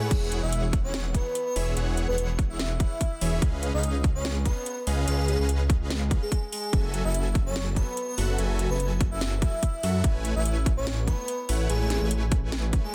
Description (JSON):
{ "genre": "future bass", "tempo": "145 BPM", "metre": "4/4", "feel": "half-time", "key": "E major", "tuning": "A4 = 441 Hz", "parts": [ { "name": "airy dreamy lead", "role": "melody", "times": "0.0-12.9 s", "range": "G#4 to E5", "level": "-35 LUFS", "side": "equal", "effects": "chorus, sidechain pumping, dub echo" }, { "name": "supersaw chords", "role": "riff", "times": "0.0-12.8 s", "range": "E3 to G#5", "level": "-36 LUFS", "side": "equal", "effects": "sidechain pumping" }, { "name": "detuned saw bass", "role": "bass", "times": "0.0-12.8 s", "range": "E1 to A2", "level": "-29 LUFS", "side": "equal", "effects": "chorus, tube saturation, sidechain pumping" }, { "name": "electronic kick drum", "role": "drums", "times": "0.1-12.8 s", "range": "none", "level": "-27 LUFS", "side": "equal", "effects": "overdrive" }, { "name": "trap drum kit", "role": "drums", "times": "0.1-12.8 s", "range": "crash cymbal, hi-hat, snare drum", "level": "-36 LUFS", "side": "equal", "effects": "overdrive" } ], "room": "little or no reverb", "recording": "dense, heavily limited modern master", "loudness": "-27 LUFS", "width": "mono", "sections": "0.0-12.9 A section", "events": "none", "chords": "0.1 E6; 3.4 C#7; 6.7 F#m7; 10.0 Amaj7" }